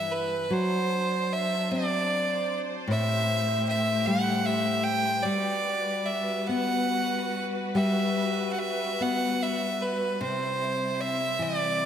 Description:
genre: celtic folk, Celtic slow air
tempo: 47-52 BPM (dotted quarters)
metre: 6/8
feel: rubato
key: unclear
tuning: A4 = 440 Hz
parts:
  - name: clear fiddle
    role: melody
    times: 0.0-11.9 s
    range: B4 to G5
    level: -27 LUFS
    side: right 2 dB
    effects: ping-pong delay
  - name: nylon-string guitar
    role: accompaniment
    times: 0.0-11.9 s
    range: G2 to G4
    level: -30 LUFS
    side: left 2 dB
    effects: none
  - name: rich studio string section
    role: sustained chords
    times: 0.0-11.9 s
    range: F#3 to C5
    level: -33 LUFS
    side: equal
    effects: none
room: wet lush hall reverb, RT60 2.0 s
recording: dreamy mix soaked in reverb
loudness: -25 LUFS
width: side -9 dB against mid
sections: 0.0-11.9 A section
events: none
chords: 0.0 G6; 0.5 D7/F#; 2.9 Am7; 5.3 Gmaj7; 10.2 C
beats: | 0.52 1.71 | 2.88 4.06 | 5.25 6.49 | 7.76 9.01 | 10.22 11.40

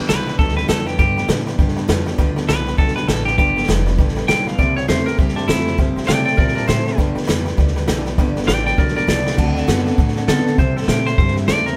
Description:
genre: rockabilly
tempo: 200 BPM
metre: 4/4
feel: swing 60% on 8ths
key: G mixolydian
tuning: A4 = 441 Hz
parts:
  - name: picked steel-string acoustic guitar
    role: accompaniment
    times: 0.0-11.8 s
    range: G2 to A4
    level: -31 LUFS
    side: equal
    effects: none
  - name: tack piano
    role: accompaniment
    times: 0.0-11.7 s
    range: A4 to A5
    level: -32 LUFS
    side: equal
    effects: none
  - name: electric guitar through a small old amp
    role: riff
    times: 0.0-11.8 s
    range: G2 to B3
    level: -27 LUFS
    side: equal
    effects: spring reverb
  - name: vintage drum kit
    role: drums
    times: 0.0-11.7 s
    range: crash cymbal, hi-hat, kick drum, snare drum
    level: -21 LUFS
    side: equal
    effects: none
  - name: clean electric guitar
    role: melody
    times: 0.1-11.8 s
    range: D4 to G5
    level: -23 LUFS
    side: equal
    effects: none
  - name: upright bass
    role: bass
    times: 0.1-11.8 s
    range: F1 to D3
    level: -25 LUFS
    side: equal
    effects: none
room: light reverb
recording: band playing live in one room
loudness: -17 LUFS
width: mono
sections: 0.0-11.8 A section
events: drum fill 9.2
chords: 0.0 G7; 4.6 C7; 7.0 G7; 9.4 D7; 10.6 C7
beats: 0.09 0.39 0.69 | 0.99 1.29 1.59 1.89 | 2.19 2.48 2.78 3.08 | 3.38 3.68 3.98 4.28 | 4.58 4.88 5.18 5.48 | 5.78 6.08 6.38 6.68 | 6.98 7.28 7.58 7.88 | 8.18 8.48 8.78 9.08 | 9.38 9.68 9.98 10.28 | 10.58 10.88 11.18 11.48

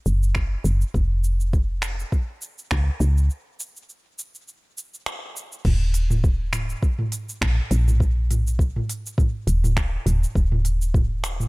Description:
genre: organic downtempo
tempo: 102 BPM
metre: 4/4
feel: swing 56% on 16ths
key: Eb minor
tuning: A4 = 440 Hz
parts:
  - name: woody FM bass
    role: bass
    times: 0.1-11.4 s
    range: Eb1 to Db2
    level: -21 LUFS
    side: equal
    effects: sidechain pumping
  - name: organic electronic drum kit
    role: drums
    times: 0.1-11.5 s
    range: crash cymbal, finger snaps, hi-hat, shaker, toms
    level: -28 LUFS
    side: right 1 dB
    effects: none
  - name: electronic kick drum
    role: drums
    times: 0.4-11.1 s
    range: none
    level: -21 LUFS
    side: equal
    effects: none
room: little or no reverb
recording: echo-heavy mix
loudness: -20 LUFS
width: side -25 dB against mid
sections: 0.0-5.6 A section; 5.6-11.5 B section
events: break 3.3-5.6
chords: none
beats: 0.35 | 0.94 1.53 2.12 2.71 | 3.30 3.88 4.47 5.06 | 5.65 6.24 6.83 7.41 | 8.00 8.59 9.18 9.77 | 10.36 10.94

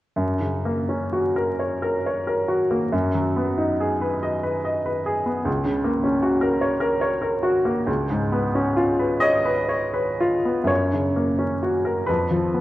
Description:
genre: classical, romantic nocturne for solo piano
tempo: 38-54 BPM (dotted quarters)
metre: 6/8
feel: rubato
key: F# major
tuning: A4 = 440 Hz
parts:
  - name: clear baby grand piano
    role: solo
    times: 0.2-12.6 s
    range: C#2 to D#5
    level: -20 LUFS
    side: equal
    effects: none
room: wet scoring stage reverb, RT60 1.7 s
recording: worn, warbling old tape, cassette tape, vinyl crackle, warbly pitch drift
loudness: -20 LUFS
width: side -15 dB against mid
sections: 0.2-10.7 A section; 10.7-12.6 B section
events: none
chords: 0.2 F#; 2.9 G#m7/F#; 5.5 F#/C#; 7.9 C#7; 10.7 F#; 12.1 F(b5, no3)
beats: | 0.16 1.59 | 2.92 4.22 | 5.47 6.61 | 7.87 9.21 | 10.70 12.08

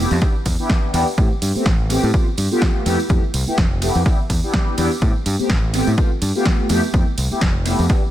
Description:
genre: filtered disco house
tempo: 125 BPM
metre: 4/4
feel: swing 55% on 16ths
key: unclear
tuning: A4 = 437 Hz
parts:
  - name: mellow synth brass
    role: accompaniment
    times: 0.0-8.0 s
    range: A3 to G4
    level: -22 LUFS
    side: equal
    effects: chorus, phaser, sidechain pumping
  - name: growling fingered electric bass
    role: bass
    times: 0.0-7.9 s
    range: F1 to A2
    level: -20 LUFS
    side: equal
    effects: overdrive, tube saturation, sidechain pumping
  - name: punchy analog drum machine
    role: drums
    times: 0.1-8.0 s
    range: hi-hat, ride cymbal, snare drum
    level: -25 LUFS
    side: equal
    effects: overdrive, sidechain pumping on hats, studio reverb, sidechain pumping on cymbals, tape echo
  - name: tambourine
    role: percussion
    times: 0.1-8.0 s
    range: none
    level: -33 LUFS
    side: right 5 dB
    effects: sidechain pumping on perc, tape echo
  - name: electronic kick drum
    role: drums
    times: 0.2-8.0 s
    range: none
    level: -18 LUFS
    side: equal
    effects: overdrive, studio reverb
room: little or no reverb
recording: echo-heavy mix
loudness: -16 LUFS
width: side -12 dB against mid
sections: 0.0-8.1 A section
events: none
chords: 0.2 Em7; 1.2 Am9; 2.1 G9; 2.9 Fmaj9#11; 4.1 Em7; 5.0 Am9; 6.0 G9; 6.7 Fmaj9#11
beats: 0.22 0.70 | 1.18 1.66 2.14 2.62 | 3.10 3.58 4.06 4.54 | 5.02 5.50 5.98 6.46 | 6.94 7.42 7.90

